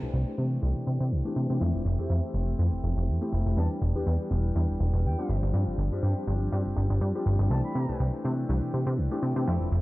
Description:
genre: house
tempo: 122 BPM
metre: 4/4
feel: swing 54% on 16ths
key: unclear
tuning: A4 = 441 Hz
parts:
  - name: bright reedy jazz flute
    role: melody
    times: 0.0-0.1, 3.6-8.0 s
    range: G5 to B5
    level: -44 LUFS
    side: right 1 dB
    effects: low-pass filter, analog delay
  - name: bright concert grand piano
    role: accompaniment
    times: 0.0-9.7 s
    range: E3 to G4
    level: -33 LUFS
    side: left 2 dB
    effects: phaser, vintage 12-bit sampler grit, low-pass filter, analog delay
  - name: direct-recorded clean electric guitar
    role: riff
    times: 0.0-9.8 s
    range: E3 to G4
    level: -39 LUFS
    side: right 2 dB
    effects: vintage 12-bit sampler grit, low-pass filter
  - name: plucky analog bass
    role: bass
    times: 0.0-9.8 s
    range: E1 to C3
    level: -26 LUFS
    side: equal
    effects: low-pass filter
room: little or no reverb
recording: echo-heavy mix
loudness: -25 LUFS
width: side -19 dB against mid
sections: 0.0-9.8 A section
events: filter sweep 0.0-9.8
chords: 0.0 C69; 1.6 Fmaj9; 3.6 Em7; 5.3 G7sus4; 7.5 C69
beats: 0.13 0.62 1.12 | 1.61 2.10 2.59 3.08 | 3.58 4.07 4.56 5.05 | 5.54 6.03 6.53 7.02 | 7.51 8.00 8.49 8.98 | 9.48

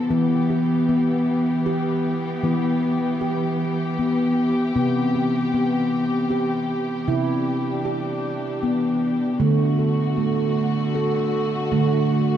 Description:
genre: world meditative, meditative tuned percussion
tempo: 78 BPM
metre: 3/4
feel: straight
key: E minor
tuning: A4 = 440 Hz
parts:
  - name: dark studio string section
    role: sustained chords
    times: 0.0-12.4 s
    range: C3 to G4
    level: -26 LUFS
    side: equal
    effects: shimmer reverb
  - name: handpan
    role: arpeggios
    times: 0.0-12.4 s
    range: C3 to A4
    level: -20 LUFS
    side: equal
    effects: shimmer reverb
room: wet echo chamber reverb, RT60 1.3 s, studio ambience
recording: dark, warm production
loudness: -19 LUFS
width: side -10 dB against mid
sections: 0.0-12.4 A section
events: none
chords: 0.1 Em; 4.8 C; 9.4 D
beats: | 0.11 0.88 1.66 | 2.43 3.21 3.98 | 4.76 5.53 6.30 | 7.08 7.85 8.63 | 9.40 10.17 10.95 | 11.72

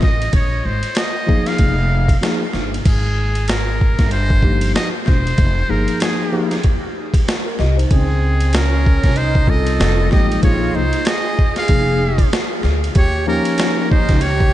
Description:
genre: hip hop, jazz-hop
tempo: 95 BPM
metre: 4/4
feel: swing 58% on 16ths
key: F minor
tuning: A4 = 439 Hz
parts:
  - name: trumpet with metal mute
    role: melody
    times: 0.0-14.5 s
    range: Ab4 to F5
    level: -23 LUFS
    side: equal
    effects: tape echo
  - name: tine electric piano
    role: accompaniment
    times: 0.0-14.2 s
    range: F3 to Eb5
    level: -23 LUFS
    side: left 2 dB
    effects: fast stereo tremolo
  - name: upright bass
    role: bass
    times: 0.0-14.5 s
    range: E1 to Eb2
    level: -18 LUFS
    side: equal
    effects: none
  - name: boom bap sampler-style drum kit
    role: drums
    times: 0.0-14.5 s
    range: crash cymbal, hi-hat, kick drum, ride cymbal, snare drum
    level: -17 LUFS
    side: equal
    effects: none
  - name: breathy mellow silver concert flute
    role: second line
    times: 7.9-14.5 s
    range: C4 to A4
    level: -23 LUFS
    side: right 3 dB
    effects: none
room: light reverb, studio ambience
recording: nothing above 10.3 kHz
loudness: -14 LUFS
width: side -14 dB against mid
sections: 0.0-2.9 A section; 2.9-13.0 A section; 13.0-14.5 B section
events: none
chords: 0.3 Bb5; 1.6 Fm9; 2.9 Abmaj9; 5.4 Fm9; 7.9 Dbmaj7; 9.8 F7; 10.4 Bbsus2; 11.7 Fm7; 13.0 Eb7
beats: | 0.33 0.96 1.59 2.22 | 2.85 3.48 4.12 4.75 | 5.38 6.01 6.64 7.27 | 7.91 8.54 9.17 9.80 | 10.43 11.06 11.69 12.33 | 12.96 13.59 14.22

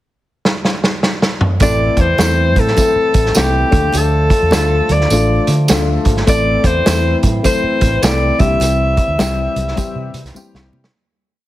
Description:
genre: uptempo 1960s-style soul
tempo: 103 BPM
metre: 4/4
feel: swing 63% on 8ths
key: unclear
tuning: A4 = 440 Hz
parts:
  - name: vintage drum kit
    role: drums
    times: 0.5-10.9 s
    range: hi-hat, kick drum, snare drum, toms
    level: -16 LUFS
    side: right 1 dB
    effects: none
  - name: breathy alto saxophone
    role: melody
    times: 1.6-10.4 s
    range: G4 to E5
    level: -17 LUFS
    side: left 1 dB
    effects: none
  - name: dark upright piano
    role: accompaniment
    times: 1.6-10.8 s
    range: G3 to A4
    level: -20 LUFS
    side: left 4 dB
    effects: none
  - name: percussive tonewheel organ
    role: sustained chords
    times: 1.6-10.9 s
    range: E3 to F4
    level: -26 LUFS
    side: right 1 dB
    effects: overdrive, stopped rotary speaker
  - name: vintage muted fingered electric bass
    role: bass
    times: 1.6-10.9 s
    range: G#1 to D3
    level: -17 LUFS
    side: right 1 dB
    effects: none
  - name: congas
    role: percussion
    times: 1.6-10.8 s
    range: none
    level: -28 LUFS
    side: right 5 dB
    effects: none
  - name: tambourine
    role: percussion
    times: 1.6-10.5 s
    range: none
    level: -26 LUFS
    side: right 4 dB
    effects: none
room: light reverb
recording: heavily compressed radio sound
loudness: -12 LUFS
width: side -15 dB against mid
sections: 0.0-1.6 pickup bar; 1.6-11.0 pre-chorus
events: drum fill 0.4-1.6, 10.4-11.0; fade-out 8.6-11.0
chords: 0.0 N.C.; 1.6 Am; 3.6 Dm; 6.3 Am; 8.3 C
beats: 0.44 1.02 | 1.60 2.19 2.77 3.35 | 3.94 4.52 5.10 5.69 | 6.27 6.86 7.44 8.03 | 8.61 9.20 9.78 10.37

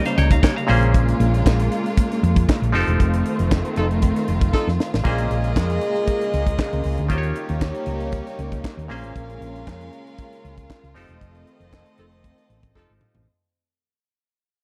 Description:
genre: disco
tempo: 117 BPM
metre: 4/4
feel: straight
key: Bb dorian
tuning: A4 = 436 Hz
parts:
  - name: bright clav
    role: accompaniment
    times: 0.0-13.3 s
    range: Bb2 to Bb5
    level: -29 LUFS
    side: equal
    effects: none
  - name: clear studio string section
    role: sustained chords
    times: 0.0-13.3 s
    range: Db3 to F4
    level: -29 LUFS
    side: equal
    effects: none
  - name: tight funk drum kit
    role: drums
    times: 0.1-13.3 s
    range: handclaps, hi-hat, kick drum, snare drum, splash cymbal, toms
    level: -22 LUFS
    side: equal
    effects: none
  - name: hollow-body short-scale fingered electric bass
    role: bass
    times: 0.2-13.3 s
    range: E1 to F2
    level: -24 LUFS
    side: equal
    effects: none
  - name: warm horn section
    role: stabs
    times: 3.8-4.7, 12.0-12.9 s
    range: Eb4 to A4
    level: -26 LUFS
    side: equal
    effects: none
  - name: warm studio violin section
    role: second line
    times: 5.0-13.2 s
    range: Bb3 to F5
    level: -30 LUFS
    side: equal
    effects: none
room: studio ambience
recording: dry, close 1970s-style studio recording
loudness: -20 LUFS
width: mono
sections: 0.0-13.3 A section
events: fade-out 0.0-13.3; band accent 3.0-5.1, 11.2-13.3; drum fill 4.5-5.1, 12.8-13.3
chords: 0.0 Eb7; 0.7 Bbm7; 2.7 F7; 5.1 Bbm7; 7.1 Eb7; 8.9 Bbm7; 11.0 F7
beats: 0.43 | 0.94 1.46 1.97 2.48 | 3.00 3.51 4.03 4.54 | 5.05 5.57 6.08 6.59 | 7.11 7.62 8.13 8.64 | 9.16 9.67 10.19 10.70 | 11.21 11.73 12.24 12.76

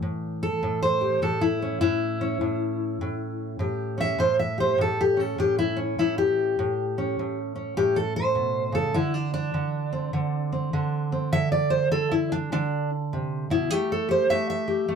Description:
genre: acoustic country blues, solo or duo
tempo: 101 BPM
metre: 4/4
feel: swing 63% on 8ths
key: A mixolydian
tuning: A4 = 440 Hz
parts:
  - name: fingerpicked steel-string acoustic guitar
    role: solo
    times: 0.0-15.0 s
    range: A2 to E5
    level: -23 LUFS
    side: equal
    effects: none
room: moderate booth ambience, RT60 0.2 s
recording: none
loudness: -23 LUFS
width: side -6 dB against mid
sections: 0.0-15.0 A section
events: steel-string acoustic guitar solo 0.0-15.0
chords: 0.0 A7; 9.0 Bmadd11 (rootless); 13.7 A5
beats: 0.04 0.63 1.23 | 1.82 2.42 3.01 3.60 | 4.20 4.79 5.39 5.98 | 6.58 7.17 7.76 8.36 | 8.95 9.55 10.14 10.74 | 11.33 11.92 12.52 13.11 | 13.71 14.30 14.89

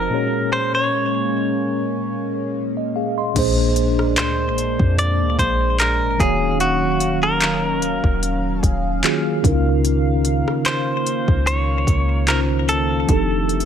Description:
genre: contemporary R&B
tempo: 74 BPM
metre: 4/4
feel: swing 54% on 16ths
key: unclear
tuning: A4 = 440 Hz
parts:
  - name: direct-recorded clean electric guitar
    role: melody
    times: 0.0-13.7 s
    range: Gb4 to D5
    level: -22 LUFS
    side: equal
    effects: ping-pong delay
  - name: mellow tine electric piano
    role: accompaniment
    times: 0.0-13.7 s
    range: Bb2 to C6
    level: -23 LUFS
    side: right 1 dB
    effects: medium stereo tremolo
  - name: chorused pulse-width pad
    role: sustained chords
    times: 0.0-13.7 s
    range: Db3 to F5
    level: -25 LUFS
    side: equal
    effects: none
  - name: clean 808-style bass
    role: bass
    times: 0.0-13.7 s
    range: Eb1 to F2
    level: -21 LUFS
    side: equal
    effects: none
  - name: smooth R&B drum kit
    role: drums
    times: 3.4-13.7 s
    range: crash cymbal, handclaps, hi-hat, kick drum, rim click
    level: -22 LUFS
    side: left 1 dB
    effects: overdrive
room: light reverb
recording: none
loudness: -17 LUFS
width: side -8 dB against mid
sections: 0.0-3.4 A section; 3.4-13.7 B section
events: none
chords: 0.1 Bbm7; 3.4 Bb9; 6.2 Ebm9; 9.4 Db69; 13.1 F13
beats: | 0.12 0.93 1.74 2.55 | 3.36 4.17 4.98 5.79 | 6.60 7.41 8.22 9.03 | 9.85 10.66 11.47 12.28 | 13.09

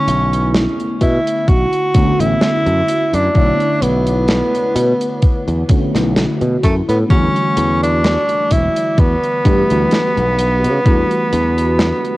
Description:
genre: vaporwave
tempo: 64 BPM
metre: 4/4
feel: swing 54% on 16ths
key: B minor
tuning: A4 = 439 Hz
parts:
  - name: breathy tenor saxophone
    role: melody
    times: 0.0-12.2 s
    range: A3 to F#4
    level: -17 LUFS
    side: equal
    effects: vintage 12-bit sampler grit, tape echo
  - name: mellow FM electric piano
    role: accompaniment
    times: 0.0-12.2 s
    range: D3 to C#5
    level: -20 LUFS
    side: equal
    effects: ensemble chorus
  - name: modern bright fingered electric bass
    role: bass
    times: 0.1-11.9 s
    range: E1 to C#3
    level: -17 LUFS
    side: equal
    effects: tube saturation
  - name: tight metal drum kit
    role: drums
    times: 0.1-12.2 s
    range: hi-hat, snare drum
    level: -22 LUFS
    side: equal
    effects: none
  - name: electronic kick drum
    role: drums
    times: 1.0-11.1 s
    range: none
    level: -13 LUFS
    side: equal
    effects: none
room: light reverb, small room ambience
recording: home recording on cassette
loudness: -12 LUFS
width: side -18 dB against mid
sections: 0.0-12.2 A section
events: none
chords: 0.0 Bm11; 7.1 Em11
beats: 0.54 1.48 2.42 | 3.35 4.29 5.23 6.17 | 7.11 8.04 8.98 9.92 | 10.86 11.79

